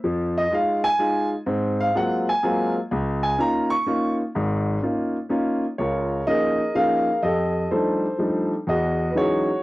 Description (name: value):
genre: jazz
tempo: 125 BPM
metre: 3/4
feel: swing 66% on 8ths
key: Db major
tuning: A4 = 439 Hz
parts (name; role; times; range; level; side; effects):
- warm concert grand piano; solo; 0.0-9.6 s; Ab1 to Db6; -20 LUFS; equal; cassette tape
room: light reverb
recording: home recording on cassette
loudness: -20 LUFS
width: side -18 dB against mid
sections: 0.0-5.8 A section; 5.8-9.6 B section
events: grand piano solo 0.0-5.8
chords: 0.0 Fm7; 1.5 Ab13; 2.9 Db69; 7.2 F13; 8.7 Emaj13